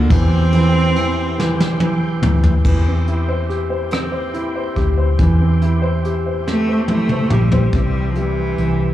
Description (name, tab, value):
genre	six-eight pop ballad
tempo	47 BPM (dotted quarters)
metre	6/8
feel	straight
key	C major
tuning	A4 = 440 Hz
part	clear cello	melody	0.0-1.8, 6.5-8.9 s	E3 to C4	-20 LUFS	right 1 dB	slapback echo, tape echo
part	clear concert grand piano	accompaniment	0.0-8.9 s	D3 to C5	-21 LUFS	equal	slapback echo
part	overdriven tonewheel organ	sustained chords	0.0-8.9 s	E3 to G5	-30 LUFS	left 1 dB	chorus vibrato, slow rotary speaker
part	vintage muted fingered electric bass	bass	0.0-8.9 s	Bb1 to E2	-18 LUFS	equal	none
part	soft brush drum kit	drums	0.1-8.8 s	crash cymbal, hi-hat, kick drum, ride cymbal, rim click, snare drum, toms	-19 LUFS	left 1 dB	none
room	small room ambience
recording	live gig heard through the venue's PA, club reverb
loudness	-14 LUFS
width	side -13 dB against mid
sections	0.0-2.6 A section; 2.6-7.7 B section; 7.7-8.9 C section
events	drum fill 1.4-2.6, 6.5-7.7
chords	0.1 C/E; 2.6 C